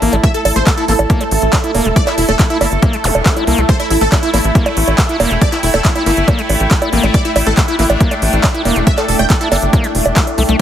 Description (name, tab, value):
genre	psychedelic trance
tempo	139 BPM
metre	4/4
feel	straight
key	unclear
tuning	A4 = 440 Hz
part	bubbling stepped-filter texture	sustained chords	0.0-10.6 s	A3 to A4	-20 LUFS	right 2 dB	chorus, built-in reverb, sidechain pumping
part	overdriven acid bass	riff	0.0-10.6 s	G3 to E4	-20 LUFS	moving between left 6 dB and right 4 dB	distortion, auto-pan, sidechain pumping, ping-pong delay
part	tight sequencer bass	bass	0.0-10.6 s	E1 to C2	-16 LUFS	equal	none
part	big-room dance drum kit	drums	0.0-10.6 s	bongos, handclaps, hi-hat	-18 LUFS	right 2 dB	none
part	warbly tape-like pad	texture	0.0-10.6 s	A3 to A5	-22 LUFS	left 1 dB	chorus, built-in reverb, sidechain pumping
part	supersaw stab	melody	0.2-9.6 s	E4 to G5	-20 LUFS	equal	phaser, sidechain pumping, digital delay
part	electronic kick drum	drums	0.2-10.2 s	none	-12 LUFS	equal	none
part	zap	sound effects	3.0-3.1 s	none	-22 LUFS	left 1 dB	none
room	light reverb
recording	heavily compressed radio sound, multiband compression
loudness	-11 LUFS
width	side -10 dB against mid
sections	0.0-10.6 A section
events	none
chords	0.0 A5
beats	| 0.23 0.67 1.10 1.53 | 1.96 2.39 2.83 3.26 | 3.69 4.12 4.55 4.98 | 5.42 5.85 6.28 6.71 | 7.14 7.57 8.01 8.44 | 8.87 9.30 9.73 10.16 | 10.60